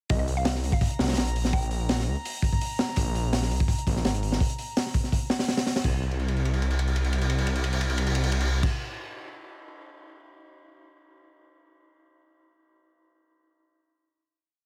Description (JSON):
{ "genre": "drum and bass, jungle", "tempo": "167 BPM", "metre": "4/4", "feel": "straight", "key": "unclear", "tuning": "A4 = 440 Hz", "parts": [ { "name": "mallet-like synth pluck", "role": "melody", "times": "0.1-1.9 s", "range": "Eb5 to G5", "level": "-39 LUFS", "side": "equal", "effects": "chorus, phaser, dub echo" }, { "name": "detuned saw bass", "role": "bass", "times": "0.1-8.7 s", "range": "Ab1 to Db2", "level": "-28 LUFS", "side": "equal", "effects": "none" }, { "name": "crunchy breakbeat drum kit", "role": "drums", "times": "0.1-10.2 s", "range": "crash cymbal, hi-hat, kick drum, ride cymbal, snare drum", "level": "-29 LUFS", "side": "equal", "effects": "none" }, { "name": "drifting glass-harmonics texture", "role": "texture", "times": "0.6-4.4 s", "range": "Bb5", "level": "-43 LUFS", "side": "equal", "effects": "chorus, built-in reverb" } ], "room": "studio reverb", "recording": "none", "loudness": "-26 LUFS", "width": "mono", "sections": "0.1-5.8 drop; 5.8-8.7 final note", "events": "drop 0.1-5.8; drum fill 6.0-8.6", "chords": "0.1 C5; 3.0 Absus2; 5.8 N.C.", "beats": "| 0.10 0.46 0.81 1.17 | 1.53 1.89 2.25 2.61 | 2.97 3.33 3.69 4.05 | 4.41 4.77 5.12 5.49 | 5.84 6.20 6.56 6.92 | 7.28 7.64 8.00 8.36" }